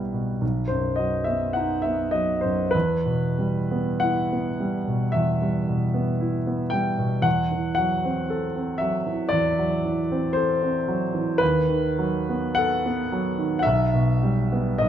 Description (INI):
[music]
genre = classical, romantic nocturne for solo piano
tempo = 44-59 BPM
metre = 4/4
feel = rubato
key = E minor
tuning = A4 = 439 Hz
[part]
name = warm concert grand piano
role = solo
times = 0.0-14.9 s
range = B1 to G5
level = -21 LUFS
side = equal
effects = none
[sound]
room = moderate recital hall reverb, RT60 1.7 s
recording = close, detailed microphones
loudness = -21 LUFS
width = side -10 dB against mid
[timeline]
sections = 0.0-14.9 A section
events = none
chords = 0.4 B; 2.7 Em; 7.3 F#m7b5/E; 11.4 B7/D#; 13.7 Em/B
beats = 0.42 1.57 | 2.74 4.03 5.15 6.21 | 7.25 8.30 9.33 10.36 | 11.41 12.57 13.66 14.82